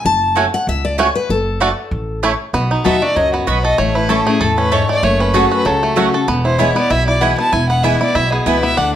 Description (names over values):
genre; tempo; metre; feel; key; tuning
bluegrass; 193 BPM; 4/4; swing 55% on 8ths; unclear; A4 = 440 Hz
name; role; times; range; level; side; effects
picked steel-string acoustic guitar; accompaniment; 0.0-9.0 s; E2 to A5; -19 LUFS; left 4 dB; none
upright bass; bass; 0.0-9.0 s; E1 to E2; -20 LUFS; equal; none
bluegrass banjo; arpeggios; 0.4-9.0 s; F#3 to A4; -18 LUFS; right 2 dB; none
mandolin; stabs; 0.4-8.6 s; A3 to B5; -20 LUFS; right 6 dB; none
dark fiddle; melody; 2.9-8.9 s; F#4 to A5; -18 LUFS; left 1 dB; none
room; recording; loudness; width
moderate large studio reverb, RT60 0.8 s; none; -13 LUFS; side -10 dB against mid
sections
0.0-2.5 A section; 2.5-9.0 B section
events
steel-string acoustic guitar solo 0.0-2.5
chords
0.1 F#madd9; 1.3 D/F#; 1.9 A; 2.5 B; 3.8 A; 5.0 F#m; 6.3 E